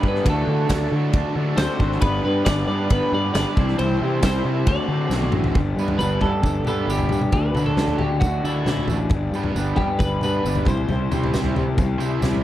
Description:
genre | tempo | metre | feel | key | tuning
indie rock | 135 BPM | 4/4 | straight | G major | A4 = 441 Hz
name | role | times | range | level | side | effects
twelve-string electric guitar | melody | 0.0-12.0 s | E4 to D5 | -27 LUFS | equal | spring reverb, slapback echo
clear trumpet | second line | 0.0-5.3 s | A3 to D4 | -33 LUFS | left 6 dB | none
cranked stack guitar | riff | 0.0-12.4 s | C3 to C5 | -28 LUFS | right 8 dB | overdrive, lush chorus, slapback echo
raw garage guitar | riff | 0.0-12.4 s | G2 to F#4 | -26 LUFS | left 4 dB | overdrive
fuzz fingered electric bass | bass | 0.0-12.4 s | G1 to D3 | -23 LUFS | equal | overdrive
big rock drum kit | drums | 0.0-12.4 s | kick drum, ride cymbal, snare drum, toms | -24 LUFS | equal | none
tambourine | percussion | 0.7-12.3 s | none | -42 LUFS | right 5 dB | none
room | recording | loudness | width
small room ambience | dry, close 1970s-style studio recording | -18 LUFS | side -13 dB against mid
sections
0.0-5.6 A section; 5.6-12.4 B section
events
drum fill 5.1-5.6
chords
0.3 D; 2.0 G; 3.6 C; 4.7 D7; 5.6 G; 7.3 Dadd9; 9.1 G; 10.7 C

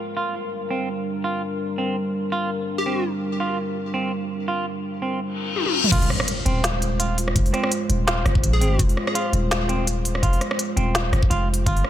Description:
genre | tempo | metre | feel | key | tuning
half-time drum and bass | 167 BPM | 4/4 | swing 55% on 16ths, half-time | F dorian | A4 = 440 Hz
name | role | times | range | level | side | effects
dark analog pad | sustained chords | 0.0-11.9 s | G3 to C5 | -27 LUFS | equal | chorus, sidechain pumping
semi-hollow electric guitar | arpeggios | 0.2-11.8 s | C4 to F4 | -28 LUFS | right 2 dB | low-pass filter, digital delay
plucky unison lead | melody | 2.8-3.0, 8.5-8.8 s | G4 to Ab4 | -31 LUFS | equal | digital delay
reverse cymbal and impact | sound effects | 5.4-7.4 s | none | -25 LUFS | left 3 dB | none
organic electronic drum kit | drums | 5.6-11.9 s | crash cymbal, hi-hat, rim click, snare drum, toms | -25 LUFS | equal | overdrive, low-pass filter on toms, low-pass filter on hats, low-pass filter on cymbals, low-pass filter on snare, low-pass filter on room
long sustained 808-style bass | bass | 5.9-11.8 s | Eb1 to Bb1 | -22 LUFS | equal | none
electronic kick drum | drums | 5.9-11.7 s | none | -22 LUFS | equal | none
room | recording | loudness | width
light reverb | none | -20 LUFS | side -12 dB against mid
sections
0.0-5.9 A section; 5.9-11.9 B section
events
reverse cymbal 5.4-5.9; drum fill 5.6-5.9; drop 5.9-11.9; impact 5.9-7.4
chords
0.2 Gm; 5.9 Fm

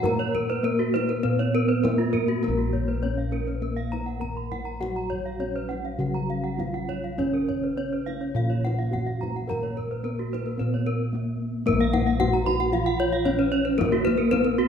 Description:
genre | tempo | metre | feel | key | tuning
Balinese gamelan | 101-113 BPM | 4/4 | straight | Bb pelog | A4 = 439 Hz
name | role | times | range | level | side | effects
gamelan-type bronze metallophone | melody | 0.0-14.7 s | Bb3 to Bb4 | -28 LUFS | equal | none
gamelan-type bronze metallophone | accompaniment | 0.0-14.7 s | Db3 to Cb4+35c | -34 LUFS | right 2 dB | none
gamelan-type bronze metallophone | arpeggios | 0.0-14.6 s | Gb4 to Bb5 | -30 LUFS | left 6 dB | none
gamelan-type bossed gongs | bass | 0.0-14.7 s | Bb1 to Bb4 | -28 LUFS | equal | none
kendang | percussion | 0.0-14.7 s | none | -34 LUFS | left 3 dB | none
gamelan-type bronze metallophone | arpeggios | 0.2-14.7 s | F4 to Cb6+35c | -32 LUFS | right 6 dB | none
room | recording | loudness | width
moderate concert hall reverb, RT60 1.9 s | minimal, uncompressed stereo recording | -23 LUFS | side -7 dB against mid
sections
0.0-11.7 A section; 11.7-14.7 B section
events
drum fill 11.0-11.7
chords
none

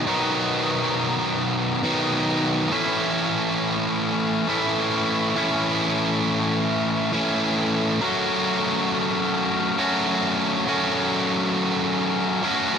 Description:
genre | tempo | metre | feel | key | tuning
rock | 45 BPM (dotted quarters) | 6/8 | straight | unclear | A4 = 440 Hz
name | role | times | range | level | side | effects
distorted electric guitar | solo | 0.0-12.8 s | A2 to F#4 | -20 LUFS | equal | overdrive
room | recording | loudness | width
moderate lush hall reverb, RT60 1.9 s | none | -20 LUFS | side -7 dB against mid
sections
0.0-12.8 A section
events
none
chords
0.0 B; 2.7 A; 8.0 F#m

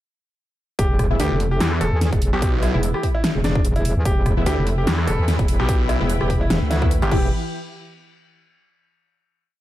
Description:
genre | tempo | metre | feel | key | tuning
heavy wobble dubstep | 147 BPM | 4/4 | swing 55% on 16ths, half-time | E minor | A4 = 441 Hz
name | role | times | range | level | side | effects
bright grand piano | melody | 0.8-7.3 s | D4 to A4 | -27 LUFS | equal | digital delay
metallic wobble bass | bass | 0.8-7.3 s | E1 to E2 | -20 LUFS | equal | chorus, overdrive
dubstep drum kit | drums | 0.8-7.2 s | crash cymbal, hi-hat, rim click, snare drum | -26 LUFS | equal | overdrive
electronic kick drum | drums | 0.8-7.2 s | none | -21 LUFS | equal | none
orchestra-hit-like synth stab | stabs | 1.1-7.3 s | E3 to E4 | -30 LUFS | left 3 dB | built-in reverb, phaser, digital delay
snarling distorted saw bass | bass | 1.2-7.1 s | G1 to E2 | -22 LUFS | equal | distortion, overdrive
warm chamber string section | sustained chords | 4.1-7.3 s | E3 to B5 | -33 LUFS | left 2 dB | sidechain pumping
room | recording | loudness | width
little or no reverb | none | -17 LUFS | side -14 dB against mid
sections
0.8-7.3 drop; 7.3-9.0 final hit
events
drop 0.8-7.3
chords
0.8 Em; 7.3 N.C.

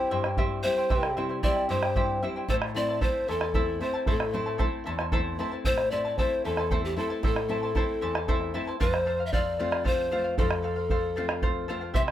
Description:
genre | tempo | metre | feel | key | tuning
andean folk, Andean ensemble | 76 BPM (dotted quarters) | 6/8 | straight | unclear | A4 = 440 Hz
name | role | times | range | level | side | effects
mellow hollow pan flute | melody | 0.0-12.0 s | G4 to E5 | -29 LUFS | left 1 dB | plate reverb
charango | accompaniment | 0.0-12.1 s | E4 to A5 | -32 LUFS | right 1 dB | none
nylon-string guitar | accompaniment | 0.0-12.1 s | E2 to F4 | -32 LUFS | left 2 dB | none
bombo | percussion | 0.2-12.1 s | none | -29 LUFS | right 1 dB | none
room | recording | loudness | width
moderate small room reverb, RT60 0.5 s | none | -25 LUFS | side -12 dB against mid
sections
0.0-8.8 A section; 8.8-12.1 A section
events
none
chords
0.0 C; 2.5 Am; 8.8 F

